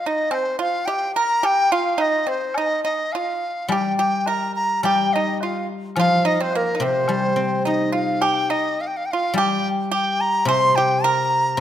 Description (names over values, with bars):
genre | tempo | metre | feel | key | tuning
chinese traditional, Chinese chamber ensemble | 106 BPM | 2/4 | rubato | C yu mode | A4 = 440 Hz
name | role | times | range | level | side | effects
bright reedy large dizi | melody | 0.0-11.6 s | Bb4 to C6 | -21 LUFS | left 1 dB | none
pipa | second line | 0.1-11.6 s | Bb3 to C5 | -24 LUFS | right 5 dB | none
woodblock | percussion | 0.3-10.6 s | none | -33 LUFS | left 2 dB | none
guzheng | accompaniment | 3.7-11.6 s | C3 to Eb4 | -23 LUFS | left 2 dB | none
room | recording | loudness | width
moderate concert hall reverb, RT60 1.7 s | none | -18 LUFS | side -10 dB against mid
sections
0.0-8.2 A section; 8.2-11.6 B section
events
none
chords
none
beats
| 0.31 0.87 | 1.44 2.00 | 2.56 3.12 | 3.70 4.27 | 4.83 5.40 | 5.96 6.52 | 7.07 7.64 | 8.22 8.80 | 9.36 9.91 | 10.47 11.03 | 11.59